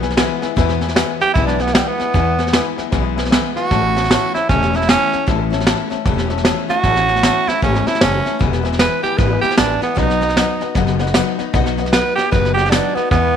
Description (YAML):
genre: rockabilly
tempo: 153 BPM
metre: 4/4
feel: swing 62% on 8ths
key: E major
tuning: A4 = 439 Hz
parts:
  - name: picked steel-string acoustic guitar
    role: accompaniment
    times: 0.0-13.4 s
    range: E2 to F#4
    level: -22 LUFS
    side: left 12 dB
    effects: none
  - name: warm upright piano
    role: accompaniment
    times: 0.0-13.3 s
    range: B4 to A5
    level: -25 LUFS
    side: left 11 dB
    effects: none
  - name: upright bass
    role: bass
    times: 0.0-13.4 s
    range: E1 to E2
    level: -21 LUFS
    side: right 1 dB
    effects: none
  - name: vintage brush drum kit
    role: drums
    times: 0.0-13.2 s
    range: hi-hat, kick drum, snare drum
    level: -18 LUFS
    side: right 1 dB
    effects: none
  - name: raspy tenor saxophone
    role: melody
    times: 1.2-13.4 s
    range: G3 to B4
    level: -17 LUFS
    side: right 4 dB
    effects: none
room: light reverb, studio ambience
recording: 1960s-style stereo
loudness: -14 LUFS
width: side -8 dB against mid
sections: 0.0-13.4 A section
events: none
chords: 0.0 E; 3.7 A; 8.4 E; 10.0 B